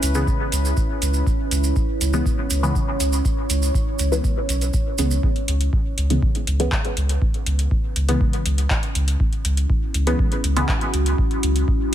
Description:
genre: dub techno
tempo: 121 BPM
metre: 4/4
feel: straight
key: C# minor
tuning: A4 = 440 Hz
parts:
  - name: deep dark ambient pad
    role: sustained chords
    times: 0.0-11.9 s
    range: C#4 to C#5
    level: -28 LUFS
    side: right 1 dB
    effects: chorus, built-in reverb, sidechain pumping
  - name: soft dub sub bass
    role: bass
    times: 0.0-11.6 s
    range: B1 to C#2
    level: -20 LUFS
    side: equal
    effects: sidechain pumping
  - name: booming analog drum machine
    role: drums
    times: 0.0-11.7 s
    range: handclaps, hi-hat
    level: -28 LUFS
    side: equal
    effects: none
  - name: maracas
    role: percussion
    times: 0.0-5.2 s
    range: none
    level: -29 LUFS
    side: right 6 dB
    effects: none
  - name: filtered dub chord stab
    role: stabs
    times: 0.2-10.7 s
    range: C#3 to B3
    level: -26 LUFS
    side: left 1 dB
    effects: chorus, phaser, cassette tape, dub echo
  - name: electronic kick drum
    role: drums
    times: 0.3-11.8 s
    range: none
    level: -22 LUFS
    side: equal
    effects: none
room: digital ambience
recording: none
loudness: -18 LUFS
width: side -11 dB against mid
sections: 0.0-5.2 A section; 5.2-11.9 A section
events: none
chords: 0.0 C#m7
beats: 0.27 0.77 | 1.27 1.76 2.26 2.75 | 3.25 3.75 4.24 4.74 | 5.23 5.73 6.22 6.72 | 7.22 7.71 8.21 8.70 | 9.20 9.70 10.19 10.69 | 11.18 11.68

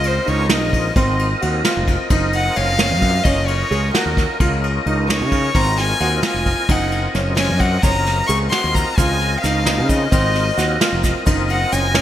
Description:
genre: progressive instrumental, band music in an uneven meter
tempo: 262 BPM (eighths)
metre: 5/8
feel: straight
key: Gb lydian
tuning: A4 = 438 Hz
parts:
  - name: rich violin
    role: melody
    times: 0.0-12.0 s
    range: Bb4 to Db6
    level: -22 LUFS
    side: left 2 dB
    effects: digital delay
  - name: tonewheel organ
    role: accompaniment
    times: 0.0-12.0 s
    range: C4 to Eb5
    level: -24 LUFS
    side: equal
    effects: overdrive, chorus vibrato, slow rotary speaker
  - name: clear concert grand piano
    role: arpeggios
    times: 0.0-12.0 s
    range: C4 to Ab4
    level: -24 LUFS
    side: right 3 dB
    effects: digital delay
  - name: fretless electric bass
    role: bass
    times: 0.0-12.0 s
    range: F1 to Db3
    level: -20 LUFS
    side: equal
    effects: wide subtle chorus
  - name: vintage brush drum kit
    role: drums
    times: 0.0-12.0 s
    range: kick drum, ride cymbal, snare drum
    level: -20 LUFS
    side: equal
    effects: gated reverb
  - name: tube shaker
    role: percussion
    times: 7.8-11.9 s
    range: none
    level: -32 LUFS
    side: right 6 dB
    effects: none
room: moderate lush hall reverb, RT60 1.6 s, small room ambience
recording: bright 1980s-style digital production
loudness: -15 LUFS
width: side -11 dB against mid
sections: 0.0-12.0 A section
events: violin solo 0.0-12.0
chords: 0.0 Dbadd9; 1.0 Ab; 2.1 Gb; 4.4 Dbadd9; 5.5 Ab; 6.7 Gb; 9.0 Dbadd9; 10.1 Ab; 11.3 Gb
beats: 0.04 0.27 0.50 0.73 | 0.96 1.19 1.42 1.65 1.88 | 2.11 2.34 2.57 2.80 3.03 | 3.25 3.48 3.71 3.94 4.17 | 4.40 4.63 4.86 5.09 5.32 | 5.55 5.78 6.00 6.23 6.46 | 6.69 6.92 7.15 7.38 7.61 | 7.84 8.07 8.29 8.52 8.75 | 8.98 9.21 9.44 9.67 9.90 | 10.12 10.35 10.58 10.81 11.04 | 11.27 11.50 11.73 11.96

